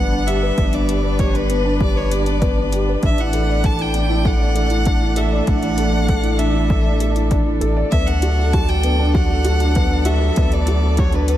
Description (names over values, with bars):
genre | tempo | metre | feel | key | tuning
piano and strings electronica | 98 BPM | 4/4 | straight | D major | A4 = 440 Hz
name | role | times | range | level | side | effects
rich violin | melody | 0.0-11.4 s | B4 to A5 | -25 LUFS | equal | diffuse ambient delay
dark string quartet | sustained chords | 0.0-11.4 s | E3 to B4 | -24 LUFS | right 2 dB | none
felt-muted upright piano | riff | 0.0-11.4 s | B3 to D5 | -23 LUFS | left 2 dB | diffuse ambient delay
warm sub bass | bass | 0.0-11.4 s | G1 to D2 | -19 LUFS | equal | sidechain pumping
electronic hi-hat | drums | 0.3-11.4 s | none | -33 LUFS | left 2 dB | overdrive
electronic kick drum | drums | 0.6-11.1 s | none | -19 LUFS | equal | overdrive
room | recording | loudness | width
light reverb, studio ambience | none | -15 LUFS | side -12 dB against mid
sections
0.0-11.4 A section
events
none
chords
0.0 G; 3.0 Asus4; 7.9 D6